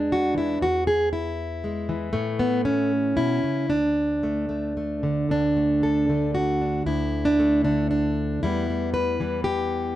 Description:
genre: folk, solo fingerstyle acoustic guitar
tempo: 116 BPM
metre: 3/4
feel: rubato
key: D lydian, D major from 5.3 s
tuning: A4 = 440 Hz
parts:
  - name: fingerpicked plugged-in steel-string acoustic guitar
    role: solo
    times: 0.0-10.0 s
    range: D2 to B4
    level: -21 LUFS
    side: equal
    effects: none
room: moderate studio reverb, RT60 0.8 s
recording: dark, warm production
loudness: -21 LUFS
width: side -13 dB against mid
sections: 0.0-5.3 A section; 5.3-10.0 B section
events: none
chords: 0.0 E; 2.1 A; 3.7 D5; 8.4 Em

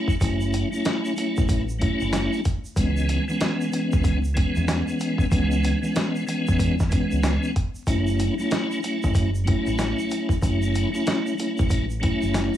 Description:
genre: hip hop, boom-bap hip-hop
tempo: 94 BPM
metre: 4/4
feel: swing 63% on 16ths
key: F# minor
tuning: A4 = 444 Hz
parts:
  - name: tonewheel organ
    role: accompaniment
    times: 0.0-12.6 s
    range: E3 to E4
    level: -24 LUFS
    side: left 1 dB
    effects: overdrive, chorus vibrato, slow rotary speaker, cassette tape, high-pass filter, low-pass filter, plate reverb
  - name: dusty soul sampler-style drum kit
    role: drums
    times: 0.1-12.5 s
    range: hi-hat, kick drum, snare drum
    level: -24 LUFS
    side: equal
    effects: none
  - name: tube shaker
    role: percussion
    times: 0.1-12.6 s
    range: none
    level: -46 LUFS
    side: right 4 dB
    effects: none
  - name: deep dub fingered electric bass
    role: bass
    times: 0.2-12.5 s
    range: F#1 to E2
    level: -24 LUFS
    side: right 1 dB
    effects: none
room: light reverb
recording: vinyl crackle, studio reverb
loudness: -21 LUFS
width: side -11 dB against mid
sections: 0.0-12.6 A section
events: none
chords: 0.0 F#m7; 2.8 C#m7; 7.9 F#m7

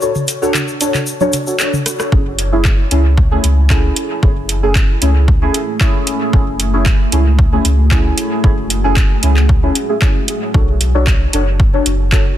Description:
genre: dub techno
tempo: 114 BPM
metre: 4/4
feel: straight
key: F# minor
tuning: A4 = 442 Hz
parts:
  - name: deep mellow chord stab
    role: stabs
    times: 0.0-12.4 s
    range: A3 to C#5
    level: -18 LUFS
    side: equal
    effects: chorus, phaser, sidechain pumping, dub echo
  - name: egg shaker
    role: percussion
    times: 0.0-2.1 s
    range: none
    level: -24 LUFS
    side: left 3 dB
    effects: none
  - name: electronic toms and congas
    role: percussion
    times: 0.2-1.8 s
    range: none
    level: -23 LUFS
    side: equal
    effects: sidechain pumping on toms, small room ambience, sidechain pumping on perc
  - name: deep house drum kit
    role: drums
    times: 0.3-12.2 s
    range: handclaps, hi-hat, rim click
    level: -20 LUFS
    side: equal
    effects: overdrive, small room ambience, dub echo
  - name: deep dark ambient pad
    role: sustained chords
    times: 4.0-12.4 s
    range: A3 to C#5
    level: -24 LUFS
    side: equal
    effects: chorus, built-in reverb, sidechain pumping
  - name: soft dub sub bass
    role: bass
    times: 2.1-12.3 s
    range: F#1 to C#2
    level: -15 LUFS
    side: equal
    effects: sidechain pumping
  - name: electronic kick drum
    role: drums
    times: 2.1-12.2 s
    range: none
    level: -13 LUFS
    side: equal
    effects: small room ambience
room: light reverb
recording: dense, heavily limited modern master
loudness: -11 LUFS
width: side -12 dB against mid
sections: 0.0-2.1 A section; 2.1-12.4 A section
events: break 0.0-2.1; drum fill 1.9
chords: 0.0 Bm9 (rootless); 2.1 F#m9; 10.5 Bm9

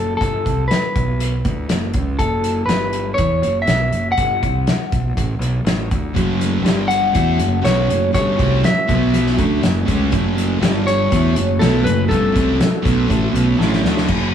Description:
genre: quiet-loud alternative rock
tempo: 121 BPM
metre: 4/4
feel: straight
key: F# minor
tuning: A4 = 440 Hz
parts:
  - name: clean electric guitar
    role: melody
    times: 0.0-13.8 s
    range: A4 to F#5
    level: -20 LUFS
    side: left 2 dB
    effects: spring reverb
  - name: fuzz fingered electric bass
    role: bass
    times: 0.0-14.3 s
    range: F#1 to E2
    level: -21 LUFS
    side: equal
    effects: overdrive
  - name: loose indie drum kit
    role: drums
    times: 0.2-14.2 s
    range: crash cymbal, hi-hat, kick drum, snare drum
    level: -21 LUFS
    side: equal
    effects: none
  - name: picked steel-string acoustic guitar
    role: arpeggios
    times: 6.1-14.1 s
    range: B2 to D5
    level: -24 LUFS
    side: right 4 dB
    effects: none
  - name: thick fuzz guitar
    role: riff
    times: 6.1-14.3 s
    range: F#2 to E4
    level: -19 LUFS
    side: left 1 dB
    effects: distortion
room: moderate studio reverb, RT60 0.9 s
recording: band playing live in one room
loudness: -15 LUFS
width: side -9 dB against mid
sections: 0.0-14.1 A section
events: drum fill 13.6-14.1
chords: 0.0 F#m; 0.9 N.C.; 1.4 F#m; 2.7 G; 3.2 F#m; 6.7 G5; 7.1 F#m; 8.9 B5; 9.4 F#m; 10.6 G5; 11.1 F#m

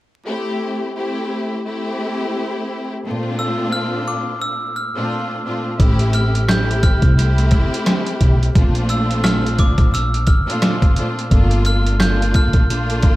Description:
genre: hip hop, boom-bap hip-hop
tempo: 87 BPM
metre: 4/4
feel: swing 58% on 16ths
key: unclear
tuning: A4 = 441 Hz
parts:
  - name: dark studio string section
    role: accompaniment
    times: 0.3-13.2 s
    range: Bb2 to G4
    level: -22 LUFS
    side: left 1 dB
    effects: none
  - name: glockenspiel with brass mallets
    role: melody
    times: 3.4-12.9 s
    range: D6 to G6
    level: -24 LUFS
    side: right 1 dB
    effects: ping-pong delay
  - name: upright bass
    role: bass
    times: 5.8-13.1 s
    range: G1 to C2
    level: -17 LUFS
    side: equal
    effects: none
  - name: trip hop sampler-style drum kit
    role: drums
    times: 5.8-13.2 s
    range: hi-hat, kick drum, rim click, snare drum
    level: -16 LUFS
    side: equal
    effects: overdrive
room: studio ambience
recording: vinyl crackle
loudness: -15 LUFS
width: side -17 dB against mid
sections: 0.3-5.8 A section; 5.8-13.2 B section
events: none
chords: 0.3 Am7; 3.0 Bbmaj7; 5.8 Am7; 8.6 Bbmaj7; 11.3 Gm7

